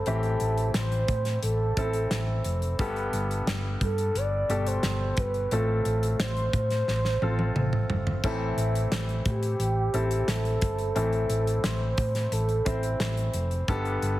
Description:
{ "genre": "piano-driven pop", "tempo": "88 BPM", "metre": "4/4", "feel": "straight", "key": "A minor", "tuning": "A4 = 440 Hz", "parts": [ { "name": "mellow horn-like synth lead", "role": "melody", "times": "0.0-13.3 s", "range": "G4 to D5", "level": "-30 LUFS", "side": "right 1 dB", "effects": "chorus" }, { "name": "clear concert grand piano", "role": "accompaniment", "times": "0.0-14.2 s", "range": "G2 to C5", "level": "-31 LUFS", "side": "left 1 dB", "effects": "none" }, { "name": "hollow-body short-scale fingered electric bass", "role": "bass", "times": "0.1-14.2 s", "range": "F1 to A2", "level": "-28 LUFS", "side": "equal", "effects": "none" }, { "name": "modern studio drum kit", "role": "drums", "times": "0.1-14.2 s", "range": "hi-hat, kick drum, snare drum, splash cymbal, toms", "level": "-31 LUFS", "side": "equal", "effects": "none" } ], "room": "light reverb, small room reverb", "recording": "heavily compressed radio sound, multiband compression", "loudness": "-24 LUFS", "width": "side -15 dB against mid", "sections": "0.0-14.2 A section", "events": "drum fill 6.9-8.2", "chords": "0.0 Am; 2.8 Gadd9; 5.5 F/A; 8.2 Am; 13.7 Gadd9" }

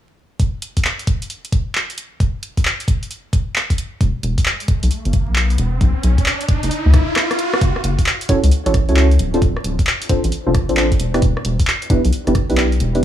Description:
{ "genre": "UK garage, two-step garage", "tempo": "133 BPM", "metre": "4/4", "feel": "swing 65% on 16ths", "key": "unclear", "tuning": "A4 = 439 Hz", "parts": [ { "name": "electronic kick drum", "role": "drums", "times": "0.4-12.5 s", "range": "none", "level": "-16 LUFS", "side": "equal", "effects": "none" }, { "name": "punchy analog drum machine", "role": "drums", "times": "0.4-13.0 s", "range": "handclaps, hi-hat, rim click", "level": "-21 LUFS", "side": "equal", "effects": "none" }, { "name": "rubbery square bass", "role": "bass", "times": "4.0-13.0 s", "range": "D1 to D2", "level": "-16 LUFS", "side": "left 1 dB", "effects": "sidechain pumping" }, { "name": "riser", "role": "sound effects", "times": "4.7-7.6 s", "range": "none", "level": "-24 LUFS", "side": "equal", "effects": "none" }, { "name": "deep mellow chord stab", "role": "stabs", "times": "8.3-13.0 s", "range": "B3 to C#5", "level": "-19 LUFS", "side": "right 1 dB", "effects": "chorus, dub echo" } ], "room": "digital ambience", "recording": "vinyl crackle, small room ambience", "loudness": "-15 LUFS", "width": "side -11 dB against mid", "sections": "0.4-7.6 A section; 7.6-13.0 B section", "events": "riser 4.7-7.6; drum fill 6.9-7.6; break 7.2-7.6", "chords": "0.4 N.C.; 3.8 Em; 5.8 Bm; 7.6 F#m7; 9.2 Dm7; 11.0 Em7" }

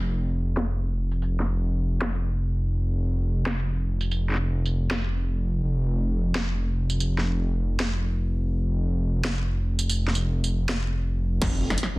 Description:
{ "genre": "half-time drum and bass", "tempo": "166 BPM", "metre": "4/4", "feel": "swing 59% on 16ths, half-time", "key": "unclear", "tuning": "A4 = 440 Hz", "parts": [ { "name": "dark detuned saw bass", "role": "bass", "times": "0.0-12.0 s", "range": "F1", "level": "-24 LUFS", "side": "equal", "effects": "none" }, { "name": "drum and bass drum kit", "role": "drums", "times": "0.6-11.9 s", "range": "crash cymbal, hi-hat, snare drum, tambourine", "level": "-30 LUFS", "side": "equal", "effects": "low-pass filter on snare, studio ambience, low-pass filter on hats, low-pass filter on perc, low-pass filter on cymbals" }, { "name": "electronic kick drum", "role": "drums", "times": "11.4-11.5 s", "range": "none", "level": "-27 LUFS", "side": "equal", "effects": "distortion, studio ambience" }, { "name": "impact", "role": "sound effects", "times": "11.4-12.0 s", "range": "none", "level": "-30 LUFS", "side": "equal", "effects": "none" } ], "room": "digital ambience", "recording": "dense, heavily limited modern master", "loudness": "-23 LUFS", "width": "side -22 dB against mid", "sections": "0.0-11.4 A section", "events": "filter sweep on drum 0.0-11.4; impact 11.4-12.0", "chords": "none" }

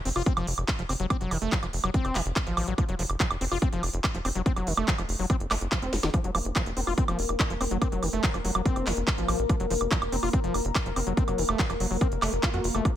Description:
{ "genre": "psychedelic trance", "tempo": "143 BPM", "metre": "4/4", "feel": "straight", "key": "unclear", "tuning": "A4 = 440 Hz", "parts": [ { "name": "overdriven acid bass", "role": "riff", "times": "0.1-12.9 s", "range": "Eb3 to Gb4", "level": "-32 LUFS", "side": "moving between left 5 dB and right 2 dB", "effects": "distortion, auto-pan, sidechain pumping, tape echo" }, { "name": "tight sequencer bass", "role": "bass", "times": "0.1-12.8 s", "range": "F1 to F2", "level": "-31 LUFS", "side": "equal", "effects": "none" }, { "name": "techno drum kit", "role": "drums", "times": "0.1-12.9 s", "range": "handclaps, hi-hat, snare drum, woodblock", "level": "-30 LUFS", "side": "right 2 dB", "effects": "none" }, { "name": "electronic kick drum", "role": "drums", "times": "0.3-12.9 s", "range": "none", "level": "-27 LUFS", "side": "equal", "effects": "none" }, { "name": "bubbling stepped-filter texture", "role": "sustained chords", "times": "6.1-13.0 s", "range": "Bb3 to Bb4", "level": "-32 LUFS", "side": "left 2 dB", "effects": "chorus, built-in reverb, sidechain pumping" } ], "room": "digital ambience", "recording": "none", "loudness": "-24 LUFS", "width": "side -11 dB against mid", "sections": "0.0-13.0 A section", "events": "drum fill 5.9", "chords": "0.0 F5" }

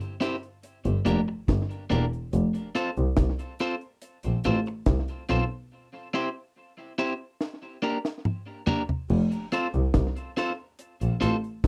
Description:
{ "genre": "roots reggae", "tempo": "71 BPM", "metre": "4/4", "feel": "straight", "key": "F major", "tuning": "A4 = 439 Hz", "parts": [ { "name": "deep reggae drum kit", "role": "drums", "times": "0.0-11.7 s", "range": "crash cymbal, hi-hat, kick drum, snare drum, toms", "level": "-28 LUFS", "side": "equal", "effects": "slapback echo" }, { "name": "electric guitar at the edge of break-up", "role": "accompaniment", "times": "0.2-11.4 s", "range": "Bb3 to C5", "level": "-31 LUFS", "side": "equal", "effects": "tape echo" }, { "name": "muted double bass", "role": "bass", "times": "0.9-11.7 s", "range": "E1 to C2", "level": "-28 LUFS", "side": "equal", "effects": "none" } ], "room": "little or no reverb", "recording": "dry, close 1970s-style studio recording", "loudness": "-28 LUFS", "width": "mono", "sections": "0.0-9.1 A section; 9.1-11.7 A section", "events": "break 5.7-9.1; drum fill 7.4-9.1", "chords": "0.0 C; 0.6 Gm; 2.3 F; 5.7 C; 7.4 Gm; 9.1 F" }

